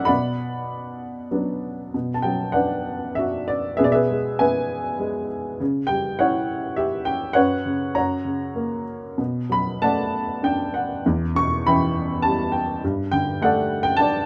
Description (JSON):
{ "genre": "classical, lyrical solo piano", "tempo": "99 BPM", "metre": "3/4", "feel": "uneven beats, rubato", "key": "B minor", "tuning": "A4 = 440 Hz", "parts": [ { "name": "warm upright piano", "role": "solo", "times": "0.0-14.3 s", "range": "E2 to C#6", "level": "-23 LUFS", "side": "equal", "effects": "none" } ], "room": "little or no reverb", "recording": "close, detailed microphones", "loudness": "-23 LUFS", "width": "mono", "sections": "0.0-1.9 A section; 1.9-14.3 B section", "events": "none", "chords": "0.1 Bm; 3.8 E/B; 5.6 C#dim; 7.4 F#sus4; 8.0 F#; 9.2 Bm7; 11.0 Em; 12.8 Gsus2", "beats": "| 0.09 0.69 1.31 | 1.94 2.56 3.19 | 3.80 4.41 5.01 | 5.60 6.19 6.78 | 7.36 7.96 8.56 | 9.19 9.82 10.43 | 11.05 11.65 12.24 | 12.83 13.42 14.01" }